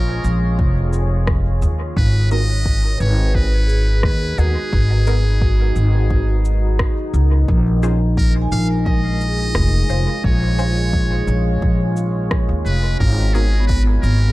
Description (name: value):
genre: ambient dub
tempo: 87 BPM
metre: 4/4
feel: swing 54% on 16ths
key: G# dorian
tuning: A4 = 439 Hz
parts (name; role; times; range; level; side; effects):
- trumpet with metal mute; melody; 0.0-14.3 s; G#4 to E#5; -27 LUFS; equal; dub echo
- deep dark ambient pad; sustained chords; 0.0-14.3 s; G#3 to C#5; -27 LUFS; left 2 dB; chorus, built-in reverb
- upright bass; bass; 0.0-14.3 s; E#1 to D#2; -16 LUFS; equal; none
- electronic cabasa and rim click; drums; 0.2-14.2 s; none; -28 LUFS; left 1 dB; dub echo
- electronic kick drum; drums; 0.6-13.8 s; none; -19 LUFS; equal; none
- filtered dub chord stab; stabs; 2.3-13.5 s; B3 to B#4; -31 LUFS; equal; phaser, dub echo
- vibraphone with soft mallets; arpeggios; 3.0-14.3 s; G#3 to G#5; -29 LUFS; right 1 dB; analog delay
room: studio reverb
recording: echo-heavy mix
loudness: -15 LUFS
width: side -18 dB against mid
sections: 0.0-14.3 A section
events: none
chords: 0.0 A#m7; 2.0 G#m7; 7.5 A#m7; 13.0 G#m7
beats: 0.59 1.28 | 1.97 2.66 3.35 4.04 | 4.72 5.42 6.11 6.79 | 7.48 8.17 8.86 9.55 | 10.24 10.93 11.62 12.31 | 13.00 13.69